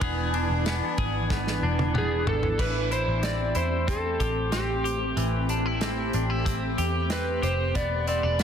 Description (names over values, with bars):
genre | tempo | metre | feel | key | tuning
dream pop | 93 BPM | 4/4 | straight | A minor | A4 = 442 Hz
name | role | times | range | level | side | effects
shimmering ambient pad | sustained chords | 0.0-8.4 s | E3 to G#5 | -32 LUFS | equal | chorus, built-in reverb
clean electric guitar | arpeggios | 0.0-8.4 s | E3 to G#4 | -30 LUFS | left 3 dB | wide subtle chorus, tape echo
vintage muted picked electric bass | bass | 0.0-8.4 s | E1 to E2 | -28 LUFS | equal | none
loose indie drum kit | drums | 0.0-8.4 s | crash cymbal, hi-hat, kick drum, ride cymbal, snare drum, tambourine, toms | -31 LUFS | right 1 dB | none
electric slide guitar | melody | 2.0-8.4 s | G4 to D5 | -29 LUFS | right 1 dB | tape echo
room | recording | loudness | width
light reverb, studio reverb | dense, heavily limited modern master | -24 LUFS | side -8 dB against mid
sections
0.0-2.6 A section; 2.6-8.4 B section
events
drum fill 1.3-2.6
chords
0.0 E7; 2.6 Am7; 7.8 E7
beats
| 0.01 0.66 1.30 1.95 | 2.59 3.24 3.88 4.53 | 5.17 5.82 6.46 7.11 | 7.75 8.40